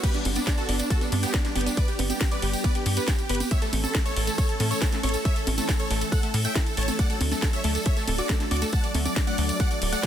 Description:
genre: uplifting trance.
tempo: 138 BPM.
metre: 4/4.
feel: straight.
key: unclear.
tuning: A4 = 438 Hz.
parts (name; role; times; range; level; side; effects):
supersaw chords; melody; 0.0-10.1 s; B3 to A5; -30 LUFS; right 1 dB; sidechain pumping, ping-pong delay.
wide unison pluck; second line; 0.0-10.1 s; D5 to A6; -38 LUFS; equal; sidechain pumping, ping-pong delay.
analog string pad; sustained chords; 0.0-10.1 s; F#3 to D4; -34 LUFS; right 1 dB; ensemble chorus, sidechain pumping.
wide unison pluck; arpeggios; 0.0-10.1 s; A3 to E4; -35 LUFS; left 2 dB; cassette tape, sidechain pumping, ping-pong delay.
electronic kick drum; drums; 0.0-10.1 s; none; -25 LUFS; equal; none.
house drum kit; drums; 0.0-10.1 s; congas, crash cymbal, hi-hat, snare drum; -31 LUFS; right 1 dB; none.
tambourine; percussion; 0.0-10.1 s; none; -37 LUFS; right 3 dB; none.
tight sequencer bass; bass; 0.3-9.9 s; D1 to A2; -26 LUFS; equal; sidechain pumping.
room: digital ambience.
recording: dense, heavily limited modern master.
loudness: -22 LUFS.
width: side -10 dB against mid.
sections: 0.0-10.1 A section.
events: none.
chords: 0.0 G; 3.5 A; 7.0 D.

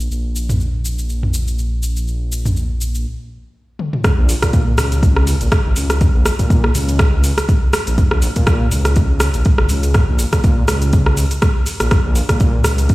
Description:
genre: afro house.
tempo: 122 BPM.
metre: 4/4.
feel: swing 56% on 16ths.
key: unclear.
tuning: A4 = 440 Hz.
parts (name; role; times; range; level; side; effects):
dark detuned saw bass; bass; 0.0-12.9 s; Ab1 to Bb2; -17 LUFS; equal; sidechain pumping.
deep house drum kit; drums; 0.0-12.9 s; cabasa, hi-hat, rim click, toms; -20 LUFS; equal; none.
electronic kick drum; drums; 4.0-12.9 s; none; -14 LUFS; equal; none.
room: light reverb.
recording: played on a big sound system in a bare room, stone room reverb.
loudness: -13 LUFS.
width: side -19 dB against mid.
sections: 0.0-4.0 A section; 4.0-12.9 B section.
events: stop 3.1-4.0; drum fill 3.8; drop 4.0-12.9.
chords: none.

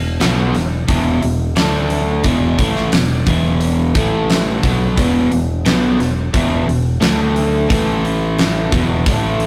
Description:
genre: blues rock power trio and southern rock.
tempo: 88 BPM.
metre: 4/4.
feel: straight.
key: unclear.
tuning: A4 = 440 Hz.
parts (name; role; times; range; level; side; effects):
crunchy overdriven guitar; riff; 0.0-9.5 s; E2 to D4; -19 LUFS; equal; none.
growling fingered electric bass; bass; 0.0-9.5 s; E1 to D2; -22 LUFS; equal; overdrive.
huge arena drum kit; drums; 0.2-9.5 s; hi-hat, kick drum, snare drum; -20 LUFS; equal; none.
room: moderate small room ambience, RT60 0.5 s.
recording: rough rehearsal-room recording, warm saturation.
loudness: -16 LUFS.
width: mono.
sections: 0.0-9.5 A section.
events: none.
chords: 0.0 E5; 1.6 D5; 2.3 E5; 4.0 A5; 4.6 E5; 7.0 D5; 7.7 A5; 8.7 E5.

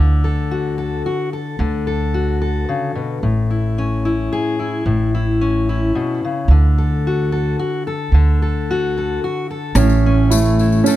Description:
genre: acoustic folk duo or small band.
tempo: 110 BPM.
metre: 3/4.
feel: straight.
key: A major.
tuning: A4 = 440 Hz.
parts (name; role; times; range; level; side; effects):
fingerpicked steel-string acoustic guitar; accompaniment; 0.0-11.0 s; A2 to A4; -19 LUFS; left 3 dB; none.
upright bass; bass; 0.0-10.8 s; A1 to D2; -16 LUFS; right 1 dB; none.
felt-muted upright piano; arpeggios; 9.8-11.0 s; C#4 to E4; -17 LUFS; right 7 dB; none.
tambourine; percussion; 9.8-11.0 s; none; -27 LUFS; left 8 dB; none.
room: little or no reverb.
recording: close, detailed microphones.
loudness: -15 LUFS.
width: side -14 dB against mid.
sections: 0.0-9.8 A section; 9.8-11.0 B section.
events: none.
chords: 0.0 D; 3.2 A; 6.5 D; 9.8 A.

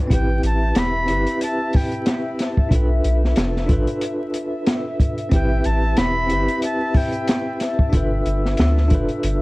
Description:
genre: trip hop.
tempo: 92 BPM.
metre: 4/4.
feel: swing 57% on 16ths.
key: A minor.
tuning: A4 = 440 Hz.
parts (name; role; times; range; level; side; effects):
bell-like tine electric piano; accompaniment; 0.0-9.4 s; C4 to B4; -24 LUFS; equal; tremolo.
warbly tape-like pad; sustained chords; 0.0-9.4 s; B4 to E5; -30 LUFS; left 3 dB; chorus, built-in reverb, phaser.
bright reedy silver concert flute; melody; 0.1-7.6 s; G5 to B5; -26 LUFS; equal; tape echo.
soft dub sub bass; bass; 0.1-9.4 s; E1 to D2; -20 LUFS; equal; none.
open jazz drum kit; drums; 0.1-9.4 s; hi-hat, kick drum, snare drum; -20 LUFS; equal; none.
room: small room ambience.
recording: worn, warbling old tape, cassette tape, vinyl crackle, warbly pitch drift.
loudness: -17 LUFS.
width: side -22 dB against mid.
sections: 0.1-9.4 A section.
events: none.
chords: 0.1 Am7; 2.7 Bm7b5; 5.3 Am7; 7.9 G7.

